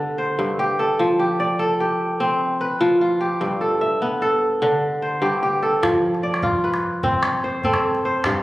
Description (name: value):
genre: west african traditional, West African string and xylophone music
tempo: 99 BPM (dotted quarters)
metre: 12/8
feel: straight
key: F lydian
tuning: A4 = 440 Hz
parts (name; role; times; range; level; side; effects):
- kora; arpeggios; 0.0-8.4 s; G2 to E5; -18 LUFS; equal; none
- calabash; percussion; 5.8-8.3 s; none; -25 LUFS; equal; none
room: wet recital hall reverb, RT60 1.6 s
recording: recorded on a phone in the room, club reverb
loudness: -18 LUFS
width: side -17 dB against mid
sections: 0.0-5.8 A section; 5.8-8.4 B section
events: none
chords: 0.0 G; 1.0 F; 3.4 G; 5.8 F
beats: 0.39 | 0.99 1.60 2.21 2.81 | 3.42 4.02 4.62 5.23 | 5.83 6.43 7.04 7.64 | 8.24